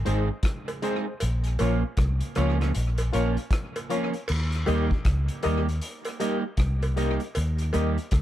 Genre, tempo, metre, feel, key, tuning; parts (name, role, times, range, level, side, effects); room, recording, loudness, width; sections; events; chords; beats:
roots reggae; 78 BPM; 4/4; swing 63% on 16ths; A4 = 442 Hz
vintage muted fingered electric bass; bass; 0.0-8.2 s; Ab1 to Eb2; -25 LUFS; equal
electric guitar at the edge of break-up; accompaniment; 0.1-8.0 s; F3 to Ab4; -30 LUFS; right 5 dB; tape echo
barky reed electric piano; stabs; 0.1-7.9 s; Eb4 to Eb5; -31 LUFS; left 6 dB; overdrive, fast tremolo
vintage drum kit; drums; 0.1-8.2 s; crash cymbal, hi-hat, kick drum, rim click; -30 LUFS; equal; tape echo
cowbell and jawbone-type rattle; percussion; 0.7-8.0 s; -36 LUFS; right 1 dB
little or no reverb; -24 LUFS; side -13 dB against mid
0.0-4.3 A section; 4.3-8.2 B section
0.0 Ab; 1.2 Bbm; 4.3 Eb
0.44 | 1.21 1.98 2.75 3.51 | 4.28 5.05 5.82 6.58 | 7.35 8.12